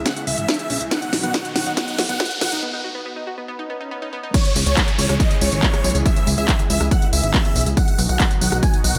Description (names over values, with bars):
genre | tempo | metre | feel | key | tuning
uplifting trance | 140 BPM | 4/4 | straight | C# minor | A4 = 440 Hz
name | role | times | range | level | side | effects
lush unison pad | sustained chords | 0.0-9.0 s | B2 to G#4 | -32 LUFS | equal | chorus, sidechain pumping
analog pluck | arpeggios | 0.0-4.3 s | B3 to G#4 | -33 LUFS | equal | chorus, cassette tape, sidechain pumping, digital delay
plucky analog bass | bass | 0.0-9.0 s | F#1 to C#2 | -24 LUFS | equal | sidechain pumping
riser, swell and downlifter | sound effects | 0.0-7.8 s | none | -33 LUFS | equal | none
big supersaw lead | melody | 0.1-9.0 s | C#5 to G#5 | -29 LUFS | equal | phaser, sidechain pumping, digital delay
electronic kick drum | drums | 0.1-8.7 s | none | -21 LUFS | equal | overdrive, high-pass filter on kick, studio reverb
techno drum kit | drums | 0.1-9.0 s | crash cymbal, handclaps, hi-hat, rim click, snare drum, tambourine | -25 LUFS | equal | overdrive, studio reverb
room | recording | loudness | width
light reverb, digital ambience | high-pass filter | -19 LUFS | mono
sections
0.0-4.3 A section; 4.3-9.0 B section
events
build-up 0.0-4.3; drum fill 0.0-2.6; riser 0.0-2.6; filter sweep on synth pluck 0.0-4.3; break 2.6-4.3; swell 3.5-4.3; drop 4.3-9.0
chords
0.0 C#m; 0.9 B; 4.3 C#m; 7.8 B